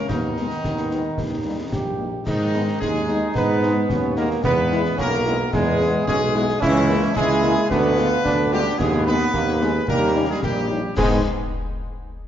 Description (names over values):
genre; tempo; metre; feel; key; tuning
military-style march for wind band; 110 BPM; 2/4; straight; G# minor; A4 = 442 Hz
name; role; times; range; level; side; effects
dark trumpet section; melody; 0.0-11.2 s; D#4 to B4; -26 LUFS; left 1 dB; none
warm trombone section; sustained chords; 0.0-11.2 s; D#3 to G4; -27 LUFS; right 1 dB; none
clear euphonium; second line; 0.1-11.2 s; D#3 to B3; -25 LUFS; right 2 dB; none
warm tuba; bass; 0.1-11.2 s; A#1 to G#2; -23 LUFS; right 1 dB; none
concert snare drum, clash cymbals and concert bass drum; drums; 0.1-11.3 s; none; -29 LUFS; left 1 dB; none
mellow French horn section; accompaniment; 0.4-11.2 s; G3 to F4; -29 LUFS; left 4 dB; none
room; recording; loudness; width
wet concert hall reverb, RT60 2.1 s; dark, warm production, nothing above 7.5 kHz; -18 LUFS; side -10 dB against mid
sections
0.0-11.0 A section; 11.0-12.1 B section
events
none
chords
0.1 G#m/D#; 1.2 D#; 2.3 G#m; 4.4 E; 6.6 A#m7b5/C#; 7.7 Ddim7; 8.8 G#m/D#; 9.9 D#7; 11.0 G#m